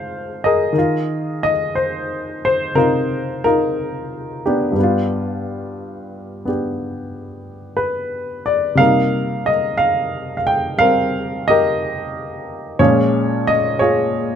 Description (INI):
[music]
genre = solo jazz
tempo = 60 BPM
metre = 4/4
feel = swing 69% on 8ths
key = unclear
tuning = A4 = 440 Hz
[part]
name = dark baby grand piano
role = solo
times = 0.0-14.4 s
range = G2 to G5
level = -17 LUFS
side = left 1 dB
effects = none
[sound]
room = light reverb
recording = close, detailed microphones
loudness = -16 LUFS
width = side -8 dB against mid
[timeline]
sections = 0.0-14.4 A section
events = none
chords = 0.0 Ab7; 0.7 Cm11; 4.8 G7; 8.8 Cm7; 12.8 Bbm7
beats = | 0.74 1.74 2.75 3.75 | 4.76 5.76 6.76 7.77 | 8.77 9.78 10.78 11.79 | 12.79 13.80